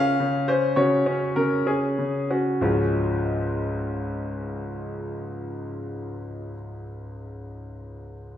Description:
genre	classical-period piano sonatina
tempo	64 BPM (dotted quarters)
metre	6/8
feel	rubato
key	Db major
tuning	A4 = 440 Hz
part	bright grand piano	solo	0.0-8.4 s	Db2 to F5	-24 LUFS	left 1 dB	none
room	moderate recital hall reverb, RT60 1.5 s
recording	recorded in a church or concert hall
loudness	-23 LUFS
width	side -10 dB against mid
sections	0.0-2.6 A section; 2.6-6.4 B section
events	slowing down 0.0-2.6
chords	0.0 Db; 0.8 Gb5/Db; 2.6 Db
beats	| 0.78 1.67 | 2.62 3.56 | 4.51 5.46

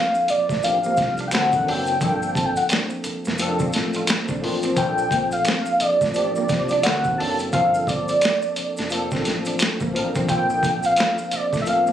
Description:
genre	R&B, neo-soul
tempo	87 BPM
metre	4/4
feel	swing 61% on 16ths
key	Bb major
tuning	A4 = 440 Hz
part	warm velvety synth lead	melody	0.0-11.9 s	D5 to A5	-20 LUFS	equal	chorus, slapback echo
part	electric guitar at the edge of break-up	second line	0.0-11.9 s	A3 to F4	-32 LUFS	right 5 dB	none
part	barky tine electric piano	accompaniment	0.0-11.9 s	F3 to Bb4	-26 LUFS	left 2 dB	ensemble chorus
part	maracas and finger snaps	percussion	0.1-11.9 s	none	-35 LUFS	equal	none
part	deep dub fingered electric bass	bass	0.3-11.9 s	F1 to Eb2	-31 LUFS	equal	none
part	boom bap sampler-style drum kit	drums	0.3-11.9 s	hi-hat, kick drum, snare drum	-24 LUFS	equal	none
room	light reverb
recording	recorded on a phone in the room, studio ambience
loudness	-19 LUFS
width	side -10 dB against mid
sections	0.0-11.9 A section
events	none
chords	0.0 Bbmaj9; 1.3 D7b13; 2.0 Gm11; 4.8 Bbmaj9; 6.8 D7b13; 7.5 Gm11; 10.3 Bbmaj9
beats	0.63 1.32 | 2.01 2.70 3.39 4.08 | 4.77 5.46 6.15 6.84 | 7.53 8.22 8.91 9.60 | 10.29 10.98 11.67

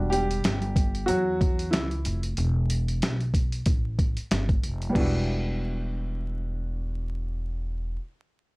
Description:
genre	hip hop, jazz-hop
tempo	93 BPM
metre	4/4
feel	swing 57% on 16ths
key	E minor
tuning	A4 = 440 Hz
part	warm upright piano	accompaniment	0.0-8.0 s	E3 to G4	-28 LUFS	equal	none
part	upright bass	bass	0.0-8.0 s	E1 to E2	-28 LUFS	equal	none
part	boom bap sampler-style drum kit	drums	0.1-5.1 s	crash cymbal, hi-hat, kick drum, snare drum	-26 LUFS	equal	none
room	little or no reverb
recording	dry, gritty hardware recording, vinyl crackle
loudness	-24 LUFS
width	side -26 dB against mid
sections	0.0-5.0 A section; 5.0-7.5 B section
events	upright piano solo 0.0-5.0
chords	0.0 Emadd9; 5.0 Em9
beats	0.43 1.08 1.72 | 2.37 3.01 3.66 4.30 | 4.95 5.59 6.24 6.88

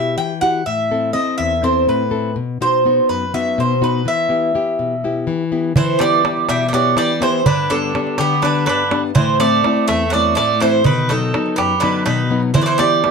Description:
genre	greek folk, Greek bouzouki band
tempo	247 BPM (eighths)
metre	7/8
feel	straight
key	E harmonic minor, E minor from 5.8 s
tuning	A4 = 440 Hz
part	Greek bouzouki	melody	0.0-13.1 s	G4 to G5	-17 LUFS	right 2 dB	none
part	nylon-string guitar	accompaniment	0.0-13.1 s	E2 to A4	-19 LUFS	left 4 dB	none
part	Greek bouzouki	second line	5.8-13.1 s	D3 to B3	-23 LUFS	right 4 dB	none
part	darbuka	percussion	5.8-13.1 s	none	-20 LUFS	right 3 dB	none
room	moderate studio ambience, RT60 0.5 s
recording	none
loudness	-14 LUFS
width	side -5 dB against mid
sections	0.0-5.8 A section; 5.8-13.1 B section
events	none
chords	0.0 Emadd9; 0.7 Am; 2.4 B; 4.1 Em; 7.5 G; 9.2 Am; 10.9 B; 12.6 Em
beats	0.18 0.42 | 0.67 0.91 1.15 1.40 1.64 1.88 2.12 | 2.37 2.61 2.85 3.10 3.34 3.58 3.83 | 4.07 4.31 4.56 4.80 5.04 5.29 5.53 | 5.77 6.01 6.26 6.50 6.74 6.98 7.23 | 7.47 7.71 7.95 8.20 8.44 8.68 8.92 | 9.17 9.41 9.65 9.89 10.14 10.38 10.62 | 10.86 11.11 11.35 11.59 11.83 12.07 12.32 | 12.56 12.80 13.04

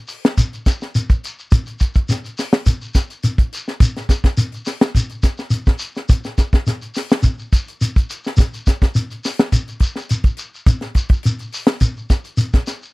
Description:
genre	afrobeat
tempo	105 BPM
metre	4/4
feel	straight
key	none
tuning	none
part	tight funk drum kit	drums	0.1-12.8 s	hi-hat, kick drum, snare drum	-14 LUFS	equal	none
part	shekere	percussion	0.1-12.9 s	none	-21 LUFS	left 1 dB	none
room	little or no reverb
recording	dry, close 1970s-style studio recording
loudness	-16 LUFS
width	side -23 dB against mid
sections	0.0-12.9 A section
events	none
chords	none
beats	0.38 0.95 | 1.52 2.09 2.66 3.23 | 3.81 4.38 4.95 5.52 | 6.09 6.67 7.24 7.81 | 8.38 8.96 9.53 10.10 | 10.67 11.25 11.82 12.39

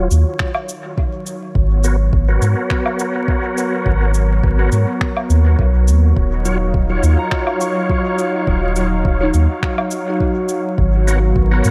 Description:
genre	ambient dub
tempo	104 BPM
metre	4/4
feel	swing 53% on 16ths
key	Eb minor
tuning	A4 = 440 Hz
part	warm analog pad	sustained chords	0.0-11.7 s	Eb3 to F5	-25 LUFS	equal	chorus
part	overdriven tonewheel organ	stabs	0.0-11.7 s	Gb3 to Db5	-25 LUFS	equal	chorus vibrato, fast rotary speaker, vintage 12-bit sampler grit, low-pass filter, dub echo
part	soft dub sub bass	bass	0.0-11.7 s	Eb1 to Ab2	-16 LUFS	equal	tube saturation
part	cabasa, finger snaps and woodblock	drums	0.1-11.7 s	none	-27 LUFS	equal	dub echo
part	electronic kick drum	drums	0.4-11.5 s	none	-21 LUFS	equal	none
part	soft synth bell	arpeggios	7.2-11.7 s	Eb4 to Db6	-28 LUFS	equal	chorus, phaser, dub echo
room	light reverb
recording	vinyl crackle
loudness	-16 LUFS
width	mono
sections	0.0-11.7 A section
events	fade-in on analog synth pad 0.0-11.7; filter sweep on tonewheel organ 0.0-11.7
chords	0.0 Ebm9; 1.6 Abm11; 6.2 Ebm9; 10.8 Abm11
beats	0.40 0.97 | 1.55 2.13 2.70 3.28 | 3.86 4.43 5.01 5.59 | 6.17 6.74 7.32 7.90 | 8.47 9.05 9.63 10.20 | 10.78 11.36

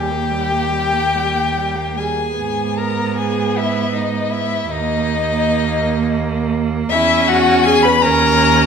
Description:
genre	classical, slow romantic movement for string quartet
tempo	47-55 BPM (dotted quarters)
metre	6/8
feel	rubato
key	unclear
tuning	A4 = 440 Hz
part	warm violin	melody	0.0-8.7 s	D#5 to B5	-19 LUFS	left 6 dB	none
part	rich violin	second line	0.0-8.7 s	D#4 to B4	-19 LUFS	left 2 dB	none
part	rich viola	accompaniment	0.0-8.7 s	G3 to C#4	-22 LUFS	right 5 dB	none
part	rich cello	bass	0.0-8.7 s	D#2 to G#2	-21 LUFS	right 5 dB	none
room	moderate recital hall reverb, RT60 1.4 s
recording	minimal, uncompressed stereo recording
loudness	-14 LUFS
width	side -6 dB against mid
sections	0.0-8.7 A section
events	none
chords	0.0 D#; 2.4 G#m; 4.7 D#5; 6.9 C#m/E; 8.0 D#5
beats	1.14 | 2.38 3.56 | 4.69 5.79 | 6.90 8.03

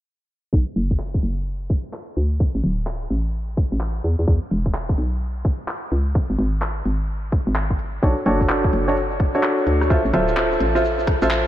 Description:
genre	UK garage, two-step garage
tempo	128 BPM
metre	4/4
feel	swing 63% on 16ths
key	B dorian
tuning	A4 = 439 Hz
part	hollow knocking FM bass	bass	0.5-11.5 s	D1 to E2	-22 LUFS	equal	none
part	electronic kick drum	drums	0.5-11.2 s	none	-21 LUFS	equal	none
part	garage drum kit	drums	0.8-11.4 s	handclaps, hi-hat, rim click	-29 LUFS	equal	none
part	warm concert grand piano	stabs	8.0-11.5 s	D4 to E5	-19 LUFS	equal	analog delay
part	maracas	percussion	8.0-11.4 s	none	-47 LUFS	right 2 dB	none
room	light reverb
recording	low-pass filter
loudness	-19 LUFS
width	side -13 dB against mid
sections	0.5-11.5 A section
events	filter sweep on FM bass 0.5-11.5; filter sweep 0.5-11.5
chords	0.5 Bm (rootless); 2.4 D5; 4.0 E5; 6.2 N.C.; 8.0 Bm7 (rootless); 9.9 Dm7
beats	| 0.53 1.00 1.47 1.93 | 2.40 2.87 3.34 3.81 | 4.28 4.75 5.21 5.68 | 6.15 6.62 7.09 7.56 | 8.03 8.50 8.96 9.43 | 9.90 10.37 10.84 11.31

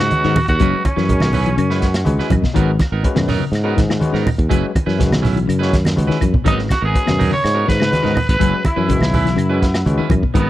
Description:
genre	afrobeat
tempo	123 BPM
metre	4/4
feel	straight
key	unclear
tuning	A4 = 444 Hz
part	raspy tenor saxophone	melody	0.0-2.3, 6.5-10.5 s	B3 to C#5	-21 LUFS	right 1 dB	none
part	clear trumpet	second line	0.0-2.3, 6.5-10.5 s	B3 to C#5	-26 LUFS	right 2 dB	none
part	clean electric guitar	arpeggios	0.0-10.5 s	B2 to F#3	-23 LUFS	left 8 dB	spring reverb
part	sustaining fretless electric bass	bass	0.0-10.5 s	F#1 to G#2	-19 LUFS	equal	none
part	claves	percussion	0.0-10.2 s	none	-32 LUFS	left 2 dB	none
part	overdriven tine electric piano	accompaniment	0.1-10.5 s	G#3 to F#5	-26 LUFS	left 4 dB	fast tremolo
part	crunchy breakbeat drum kit	drums	0.1-10.5 s	hi-hat, kick drum, snare drum	-20 LUFS	equal	none
part	congas	percussion	0.1-10.5 s	none	-21 LUFS	right 1 dB	none
part	clean electric guitar	stabs	0.2-10.5 s	F#3 to B4	-26 LUFS	right 8 dB	spring reverb
room	small room ambience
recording	dry, close 1970s-style studio recording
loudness	-14 LUFS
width	side -14 dB against mid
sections	0.0-10.5 A section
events	tine electric piano fill 1.6-2.6, 9.4-10.4; drum fill 5.7-6.5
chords	0.0 G#m9; 0.6 F#7sus4; 2.6 G#m9; 4.5 F#7sus4; 6.5 G#m9; 8.4 F#7sus4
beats	0.12 | 0.61 1.10 1.59 2.07 | 2.56 3.05 3.54 4.02 | 4.51 5.00 5.49 5.97 | 6.46 6.95 7.43 7.92 | 8.41 8.89 9.38 9.87 | 10.35

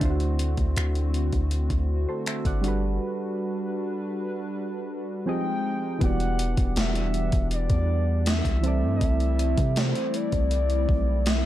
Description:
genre	contemporary R&B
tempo	80 BPM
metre	4/4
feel	straight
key	E minor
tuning	A4 = 440 Hz
part	soft electric-piano-like synth keys	accompaniment	0.0-11.5 s	D3 to F#5	-31 LUFS	right 1 dB	chorus
part	hollow soft pad	sustained chords	0.0-11.5 s	D3 to G5	-33 LUFS	left 1 dB	chorus, sidechain pumping
part	long sustained 808-style bass	bass	0.0-11.4 s	E1 to C3	-25 LUFS	equal	none
part	gated 80s digital drum machine	drums	0.0-11.4 s	finger snaps, hi-hat, kick drum, snare drum	-26 LUFS	equal	gated reverb, gated reverb snare, overdrive
part	gliding portamento lead	melody	5.3-11.5 s	C5 to G5	-31 LUFS	left 1 dB	chorus, phaser
room	digital ambience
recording	dry, gritty hardware recording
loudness	-23 LUFS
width	side -13 dB against mid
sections	0.0-6.0 A section; 6.0-11.5 B section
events	break 3.0-6.0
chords	0.0 D7; 2.6 Gmaj7; 5.3 Fm9; 6.0 Em9; 8.6 C6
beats	| 0.01 0.77 1.51 2.27 | 3.02 3.77 4.51 5.26 | 6.01 6.76 7.51 8.27 | 9.02 9.77 10.52 11.27

